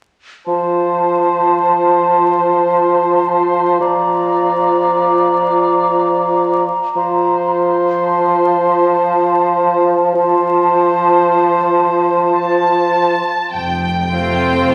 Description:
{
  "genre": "classical, slow romantic movement for symphony orchestra",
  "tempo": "48-58 BPM",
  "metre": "3/4",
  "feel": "rubato",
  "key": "F major",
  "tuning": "A4 = 440 Hz",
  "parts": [
    { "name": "mellow hollow silver concert flute", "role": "second line", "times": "0.5-13.2 s", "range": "A5 to Bb5", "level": "-19 LUFS", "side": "equal", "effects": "none" },
    { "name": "warm clarinet", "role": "second line", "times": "0.5-13.2 s", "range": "F4", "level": "-23 LUFS", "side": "equal", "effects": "none" },
    { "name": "warm cor anglais", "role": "second line", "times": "0.5-13.2 s", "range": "C5 to D5", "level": "-21 LUFS", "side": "equal", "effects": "none" },
    { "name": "warm bassoon", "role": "accompaniment", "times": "0.5-13.2 s", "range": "F3", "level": "-19 LUFS", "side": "equal", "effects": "none" },
    { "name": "rich studio violin section", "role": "melody", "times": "12.3-14.7 s", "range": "G5 to A5", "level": "-22 LUFS", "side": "equal", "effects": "none" },
    { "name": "warm studio cello section", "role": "bass", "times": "13.5-14.7 s", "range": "F2", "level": "-25 LUFS", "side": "equal", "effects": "none" },
    { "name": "warm studio double bass section", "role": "bass", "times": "13.6-14.7 s", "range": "F1", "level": "-26 LUFS", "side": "equal", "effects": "none" },
    { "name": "warm studio violin section", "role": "second line", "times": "14.1-14.7 s", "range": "F4 to C5", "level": "-19 LUFS", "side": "equal", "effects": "none" },
    { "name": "rich studio viola section", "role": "accompaniment", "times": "14.1-14.7 s", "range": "A3 to C4", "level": "-21 LUFS", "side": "equal", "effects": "none" }
  ],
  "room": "wet concert hall reverb, RT60 2.4 s",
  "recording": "vinyl crackle",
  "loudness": "-14 LUFS",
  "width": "mono",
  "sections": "0.5-13.5 A section; 13.5-14.7 B section",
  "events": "none",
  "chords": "0.5 F",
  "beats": "| 0.48 1.60 2.73 | 3.81 4.87 5.92 | 6.97 8.04 9.10 | 10.14 11.23 12.36 | 13.55 14.68"
}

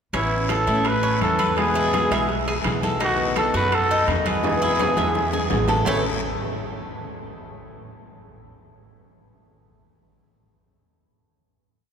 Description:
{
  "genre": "latin, Cuban son and guajira",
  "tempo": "168 BPM",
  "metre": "4/4",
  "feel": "straight",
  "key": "A major",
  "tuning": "A4 = 440 Hz",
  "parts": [
    { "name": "fingerpicked steel-string acoustic guitar", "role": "accompaniment", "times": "0.1-6.0 s", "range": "A2 to F#4", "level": "-28 LUFS", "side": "left 2 dB", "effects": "none" },
    { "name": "Cuban tres", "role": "arpeggios", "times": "0.1-6.0 s", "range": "A3 to E5", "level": "-27 LUFS", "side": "right 1 dB", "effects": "none" },
    { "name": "upright bass", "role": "bass", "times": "0.1-6.0 s", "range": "A1 to A2", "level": "-28 LUFS", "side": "equal", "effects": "none" },
    { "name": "bongos", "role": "percussion", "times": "0.1-6.0 s", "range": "none", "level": "-33 LUFS", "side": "left 3 dB", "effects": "none" },
    { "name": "congas", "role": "percussion", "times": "0.1-5.9 s", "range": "none", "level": "-34 LUFS", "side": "left 1 dB", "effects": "none" },
    { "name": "guiro", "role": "percussion", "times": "0.1-5.9 s", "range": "none", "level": "-36 LUFS", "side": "left 5 dB", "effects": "none" },
    { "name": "timbales", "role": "percussion", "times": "0.1-5.9 s", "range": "none", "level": "-31 LUFS", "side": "right 4 dB", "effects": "none" },
    { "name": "growling trumpet", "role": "melody", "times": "0.2-6.0 s", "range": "E4 to C#5", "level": "-24 LUFS", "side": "right 1 dB", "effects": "none" }
  ],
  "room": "wet cathedral reverb, RT60 5.2 s",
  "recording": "recorded in a church or concert hall",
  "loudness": "-19 LUFS",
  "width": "side -7 dB against mid",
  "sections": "0.1-5.9 verse; 5.9-7.3 final chord",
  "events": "drum fill 4.4-5.9",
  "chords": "0.1 Aadd9; 1.6 Eadd9; 3.0 B7; 4.4 Eadd9; 5.9 A5",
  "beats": "| 0.14 0.50 0.86 1.22 | 1.57 1.93 2.29 2.65 | 3.01 3.37 3.72 4.08 | 4.44 4.79 5.15 5.51 | 5.86"
}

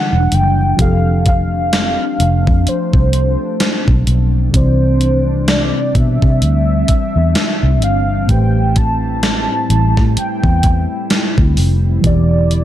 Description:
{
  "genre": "contemporary R&B",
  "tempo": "64 BPM",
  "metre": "4/4",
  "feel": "swing 58% on 16ths",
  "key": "unclear",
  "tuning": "A4 = 440 Hz",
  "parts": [
    { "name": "warm velvety synth lead", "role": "melody", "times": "0.0-12.6 s", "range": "C5 to A5", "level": "-20 LUFS", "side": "equal", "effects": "chorus, digital delay" },
    { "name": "mellow FM electric piano", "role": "accompaniment", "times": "0.0-12.6 s", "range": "A2 to F5", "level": "-21 LUFS", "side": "equal", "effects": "chorus, phaser" },
    { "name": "glassy FM pad", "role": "sustained chords", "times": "0.0-12.6 s", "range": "D3 to E4", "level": "-21 LUFS", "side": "equal", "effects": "ensemble chorus, built-in reverb" },
    { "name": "vintage muted fingered electric bass", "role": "bass", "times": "0.1-12.6 s", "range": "E1 to C3", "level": "-14 LUFS", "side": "equal", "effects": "none" },
    { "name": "gated 80s digital drum machine", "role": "drums", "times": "0.3-12.6 s", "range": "hi-hat, kick drum, rim click, snare drum", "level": "-15 LUFS", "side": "equal", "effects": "gated reverb, gated reverb snare" }
  ],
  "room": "digital ambience",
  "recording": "dark, warm production",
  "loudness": "-12 LUFS",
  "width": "side -12 dB against mid",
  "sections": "0.0-12.6 A section",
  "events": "none",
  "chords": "0.0 Em9; 0.8 F; 4.5 Cadd9; 8.3 Am7; 12.0 Em7",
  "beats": "| 0.79 1.73 2.67 3.60 | 4.54 5.48 6.42 7.35 | 8.29 9.23 10.16 11.10 | 12.04"
}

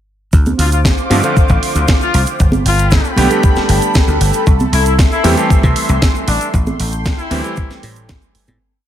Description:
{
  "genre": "nu-disco, nu disco",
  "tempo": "116 BPM",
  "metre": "4/4",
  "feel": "straight",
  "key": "D dorian",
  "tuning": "A4 = 441 Hz",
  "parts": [
    { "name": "lush unison pad", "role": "sustained chords", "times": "0.6-8.6 s", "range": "A4 to D6", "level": "-20 LUFS", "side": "left 1 dB", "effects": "chorus, phaser, sidechain pumping" },
    { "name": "dry thumbed slap bass", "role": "bass", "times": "0.3-8.6 s", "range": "G1 to C3", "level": "-15 LUFS", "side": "equal", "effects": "none" },
    { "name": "electronic kick drum", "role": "drums", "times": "0.3-8.2 s", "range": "none", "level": "-12 LUFS", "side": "equal", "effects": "none" },
    { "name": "house drum kit", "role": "drums", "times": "0.3-8.6 s", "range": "hi-hat, snare drum", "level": "-21 LUFS", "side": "right 1 dB", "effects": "none" },
    { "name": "tube shaker and congas", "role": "percussion", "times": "0.3-8.6 s", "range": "none", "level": "-22 LUFS", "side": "right 3 dB", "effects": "none" },
    { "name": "bright trumpet section", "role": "melody", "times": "0.6-7.7 s", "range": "D4 to F4", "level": "-22 LUFS", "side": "left 4 dB", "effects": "vintage 12-bit sampler grit, tape echo" },
    { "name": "bright electric grand piano", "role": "accompaniment", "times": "1.1-8.6 s", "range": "D3 to G4", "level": "-18 LUFS", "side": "right 2 dB", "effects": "sidechain pumping, dub echo" }
  ],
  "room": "little or no reverb",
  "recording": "none",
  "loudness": "-11 LUFS",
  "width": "side -11 dB against mid",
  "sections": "0.3-8.6 groove",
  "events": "fade-out 5.8-8.6",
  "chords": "0.3 Dm7; 2.4 Gadd9; 4.5 C6; 6.5 Am7",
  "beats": "| 0.33 0.85 1.36 1.88 | 2.40 2.92 3.43 3.95 | 4.47 4.99 5.50 6.02 | 6.54 7.05 7.57 8.09"
}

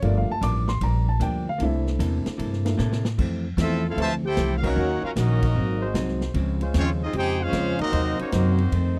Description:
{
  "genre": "jazz, big band swing",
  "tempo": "152 BPM",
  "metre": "4/4",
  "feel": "swing 67% on 8ths",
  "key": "unclear",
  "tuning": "A4 = 440 Hz",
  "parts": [
    { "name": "vintage hollow-body jazz guitar", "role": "accompaniment", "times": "0.0-9.0 s", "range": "F2 to A4", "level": "-32 LUFS", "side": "equal", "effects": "none" },
    { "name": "warm grand piano", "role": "accompaniment", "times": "0.0-3.2 s", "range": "A3 to D6", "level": "-31 LUFS", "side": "equal", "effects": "none" },
    { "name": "upright bass", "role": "bass", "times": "0.0-9.0 s", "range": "G1 to A2", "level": "-26 LUFS", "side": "equal", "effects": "none" },
    { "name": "swinging big-band drum kit", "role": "drums", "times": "0.0-8.8 s", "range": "crash cymbal, hi-hat, kick drum, ride cymbal, snare drum", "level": "-34 LUFS", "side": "equal", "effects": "none" },
    { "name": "bright trumpet section", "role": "melody", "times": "3.6-9.0 s", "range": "Ab3 to A5", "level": "-31 LUFS", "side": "equal", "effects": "none" },
    { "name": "clear trombone section", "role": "second line", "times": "3.6-9.0 s", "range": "C3 to G4", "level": "-31 LUFS", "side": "equal", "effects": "none" },
    { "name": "warm trombone section", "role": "sustained chords", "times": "4.6-8.5 s", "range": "Gb3 to C5", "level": "-34 LUFS", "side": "equal", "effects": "none" }
  ],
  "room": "little or no reverb",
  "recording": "dry, close 1970s-style studio recording",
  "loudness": "-24 LUFS",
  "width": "mono",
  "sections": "0.0-3.2 A section; 3.2-9.0 B section",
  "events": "grand piano solo 0.0-3.2; drum fill 2.8-3.2; band accent 4.6",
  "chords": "0.0 Gm7; 1.6 C13; 3.2 Fmaj7; 4.8 Ebm7; 5.6 Ab7; 6.3 Dbmaj7; 7.9 Cm7b5",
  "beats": "| 0.03 0.42 0.81 1.21 | 1.60 2.00 2.40 2.79 | 3.19 3.58 3.98 4.37 | 4.77 5.16 5.56 5.95 | 6.35 6.74 7.14 7.54 | 7.93 8.33 8.72"
}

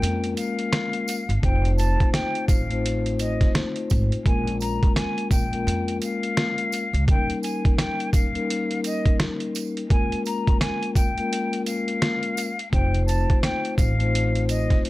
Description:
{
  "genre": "hip hop, boom-bap hip-hop",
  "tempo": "85 BPM",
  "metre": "4/4",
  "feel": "swing 59% on 16ths",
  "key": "Bb dorian",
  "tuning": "A4 = 440 Hz",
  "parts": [
    { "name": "concert flute", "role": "melody", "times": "0.0-14.8 s", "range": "Eb5 to Bb5", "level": "-29 LUFS", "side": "left 1 dB", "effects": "high-pass filter, low-pass filter, ping-pong delay" },
    { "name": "vibraphone with soft mallets", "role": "accompaniment", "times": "0.0-14.9 s", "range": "G3 to C5", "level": "-27 LUFS", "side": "left 3 dB", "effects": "cassette tape, high-pass filter, low-pass filter" },
    { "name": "upright bass", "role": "bass", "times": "0.0-7.1, 12.7-14.7 s", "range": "F1 to F2", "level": "-24 LUFS", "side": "equal", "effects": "none" },
    { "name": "trip hop sampler-style drum kit", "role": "drums", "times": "0.0-14.9 s", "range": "hi-hat, kick drum, rim click, snare drum", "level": "-22 LUFS", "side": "equal", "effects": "none" },
    { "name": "tambourine", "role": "percussion", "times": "0.4-14.7 s", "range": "none", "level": "-38 LUFS", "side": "right 10 dB", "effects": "none" }
  ],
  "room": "little or no reverb",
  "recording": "none",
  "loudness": "-21 LUFS",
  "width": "side -18 dB against mid",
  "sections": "0.0-14.9 A section",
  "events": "none",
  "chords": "0.0 Bbm7; 1.4 F7; 4.3 Bbm7; 7.1 Eb7; 9.9 Bbm7; 12.7 F7",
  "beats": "0.02 0.73 | 1.43 2.14 2.84 3.55 | 4.25 4.96 5.67 6.37 | 7.08 7.78 8.49 9.20 | 9.90 10.61 11.31 12.02 | 12.73 13.43 14.14 14.84"
}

